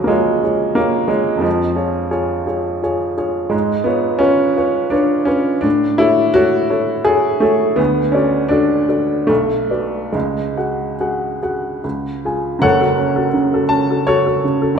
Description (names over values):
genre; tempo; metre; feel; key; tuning
classical, romantic character piece for solo piano; 69-91 BPM; 3/4; rubato; F# minor from 3.5 s; A4 = 441 Hz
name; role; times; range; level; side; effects
warm upright piano; solo; 0.0-14.8 s; F#1 to A5; -14 LUFS; equal; none
room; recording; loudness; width
wet concert hall reverb, RT60 2.0 s; recorded in a church or concert hall; -14 LUFS; side -6 dB against mid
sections
0.0-12.6 A section; 12.6-14.8 B section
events
none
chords
0.0 C#; 1.4 C#/E#; 3.5 C#7/G#; 5.6 F#m/A; 7.8 D; 9.3 Bm; 10.1 C#sus4; 11.8 C#; 12.6 F#m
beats
0.11 0.79 | 1.45 2.14 2.84 | 3.53 4.23 4.94 | 5.64 6.37 7.07 | 7.79 8.52 9.29 | 10.14 10.99 11.83 | 12.63 13.34 14.08